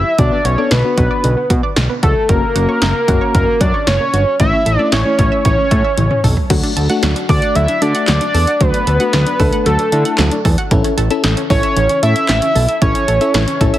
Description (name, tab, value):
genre	synth-pop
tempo	114 BPM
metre	4/4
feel	straight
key	D major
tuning	A4 = 440 Hz
part	fat analog lead	melody	0.0-13.8 s	A4 to E5	-16 LUFS	equal	chorus
part	fat analog bass	bass	0.0-13.7 s	F#1 to D3	-16 LUFS	equal	none
part	FM electric piano with auto-pan	accompaniment	0.2-13.8 s	A3 to A4	-20 LUFS	left 3 dB	none
part	analog pluck	arpeggios	0.2-13.8 s	C#3 to F#5	-23 LUFS	right 3 dB	chorus, ping-pong delay
part	punchy analog drum machine	drums	0.2-13.8 s	crash cymbal, handclaps, hi-hat, kick drum, snare drum, toms	-17 LUFS	equal	none
room	light reverb, digital ambience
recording	heavily compressed radio sound, multiband compression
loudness	-12 LUFS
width	side -13 dB against mid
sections	0.0-6.5 A section; 6.5-13.8 B section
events	drum fill 6.0-6.5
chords	0.2 Bm; 2.3 F#; 4.4 A; 6.5 D; 10.7 A